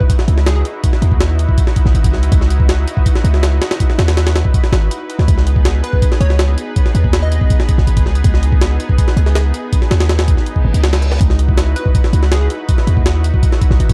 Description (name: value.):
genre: drum and bass, jungle.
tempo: 162 BPM.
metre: 4/4.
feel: straight.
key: C# minor.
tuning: A4 = 440 Hz.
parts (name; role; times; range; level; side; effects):
plucky unison lead; melody; 0.0-0.6, 5.8-7.7, 11.8-12.5 s; G#4 to D#5; -30 LUFS; equal; dub echo.
lush unison pad; sustained chords; 0.0-13.9 s; B3 to B4; -28 LUFS; equal; chorus, vintage 12-bit sampler grit.
jungle sampler-style drum kit; drums; 0.0-13.9 s; hi-hat, kick drum, snare drum; -16 LUFS; equal; none.
warm 808-style bass; bass; 0.3-13.9 s; G#1 to D#2; -15 LUFS; equal; none.
reverse cymbal; sound effects; 10.6-11.2 s; none; -32 LUFS; equal; none.
room: digital ambience.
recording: dark, warm production.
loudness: -14 LUFS.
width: mono.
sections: 0.0-13.9 A section.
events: reverse cymbal 10.6-11.2.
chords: 0.0 C#m11; 5.3 G#m; 11.2 C#m11.